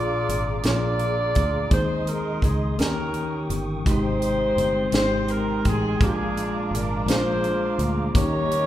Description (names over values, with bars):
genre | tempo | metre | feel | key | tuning
slow gospel | 56 BPM (dotted quarters) | 6/8 | straight | Ab major | A4 = 440 Hz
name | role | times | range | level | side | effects
mellow saxophone section | melody | 0.0-8.7 s | Db4 to D5 | -26 LUFS | equal | none
mellow tine electric piano | accompaniment | 0.0-8.7 s | Bb2 to Ab4 | -28 LUFS | left 2 dB | medium stereo tremolo
mellow tonewheel organ | sustained chords | 0.0-8.7 s | Ab3 to Eb6 | -30 LUFS | right 1 dB | chorus vibrato, stopped rotary speaker
fingered electric bass | bass | 0.0-8.7 s | G1 to Eb2 | -28 LUFS | equal | none
tight funk drum kit | drums | 0.3-8.7 s | hi-hat, kick drum, snare drum | -25 LUFS | equal | none
warm symphonic string section | sustained chords | 3.9-8.7 s | Eb3 to Eb4 | -38 LUFS | right 1 dB | none
room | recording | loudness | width
moderate recital hall reverb, RT60 1.3 s | recorded in a church or concert hall | -21 LUFS | side -13 dB against mid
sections
0.0-8.7 A section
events
none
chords
0.0 Bb7; 1.7 Ab/Eb; 2.8 Eb7; 3.9 Abmaj7; 6.0 Bb7; 8.2 Eb7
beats
0.64 | 1.72 2.79 | 3.86 4.94 | 6.01 7.08 | 8.15